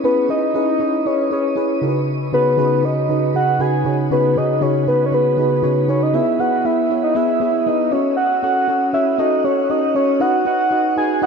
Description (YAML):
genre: pop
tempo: 118 BPM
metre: 4/4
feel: straight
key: unclear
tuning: A4 = 440 Hz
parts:
  - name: soft octave-layered synth lead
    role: melody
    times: 0.0-11.3 s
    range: B4 to G#5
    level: -17 LUFS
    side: equal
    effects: chorus, shimmer reverb, tape echo
  - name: mellow FM electric piano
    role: accompaniment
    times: 0.0-11.3 s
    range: C#3 to D#5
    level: -19 LUFS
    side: equal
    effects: chorus, shimmer reverb
room: wet echo chamber reverb, RT60 1.9 s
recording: dark, warm production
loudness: -15 LUFS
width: side -5 dB against mid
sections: 0.0-6.1 A section; 6.1-11.3 B section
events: none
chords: 0.0 C#m7; 1.8 G#m7/C#; 6.1 E; 7.9 F#m; 10.2 B